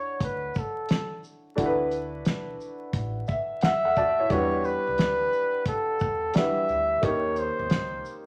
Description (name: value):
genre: hip hop, jazz-hop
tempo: 88 BPM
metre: 4/4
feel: swing 65% on 16ths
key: unclear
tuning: A4 = 440 Hz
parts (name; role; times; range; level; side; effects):
- trumpet with bucket mute; melody; 0.0-8.2 s; A4 to E5; -28 LUFS; equal; none
- warm upright piano; accompaniment; 0.0-8.3 s; G3 to A5; -32 LUFS; equal; none
- upright bass; bass; 0.2-8.0 s; A1 to E2; -40 LUFS; equal; none
- cloth-damped thuddy drum kit; drums; 0.2-8.3 s; hi-hat, kick drum, shaker, snare drum; -29 LUFS; equal; none
room: moderate large studio reverb, RT60 0.8 s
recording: vinyl crackle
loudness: -26 LUFS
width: mono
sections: 0.0-4.3 A section; 4.3-8.3 B section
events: upright piano fill 2.9-4.3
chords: 0.0 Dmaj9; 4.3 Em7; 7.0 Eb7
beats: 0.21 0.89 | 1.58 2.26 2.94 3.62 | 4.30 4.99 5.67 6.35 | 7.03 7.71